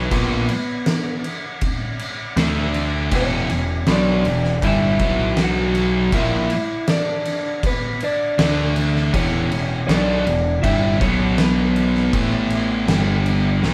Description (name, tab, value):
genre	quiet-loud alternative rock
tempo	80 BPM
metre	4/4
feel	straight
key	unclear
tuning	A4 = 441 Hz
part	electric guitar through a small old amp	melody	0.0-13.7 s	B3 to F#5	-26 LUFS	equal	none
part	sludgy distorted guitar	riff	0.0-13.7 s	E2 to D4	-26 LUFS	equal	overdrive
part	thick fuzz guitar	riff	0.0-13.7 s	E2 to D4	-25 LUFS	equal	distortion
part	growling picked electric bass	bass	0.0-13.7 s	E1 to D2	-26 LUFS	equal	overdrive
part	oversized low-tuned drum kit	drums	0.1-13.7 s	crash cymbal, kick drum, snare drum	-25 LUFS	equal	none
room	moderate studio reverb, RT60 0.7 s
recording	band playing live in one room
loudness	-19 LUFS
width	mono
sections	0.0-13.7 A section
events	none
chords	0.1 A#5; 2.4 D5; 3.1 E5; 5.0 B5; 6.1 E5; 8.4 D5; 9.1 E5; 11.0 B5; 12.1 A5; 12.9 G5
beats	| 0.11 0.86 1.62 2.37 | 3.12 3.88 4.63 5.38 | 6.13 6.88 7.64 8.39 | 9.14 9.89 10.64 11.39 | 12.14 12.89 13.64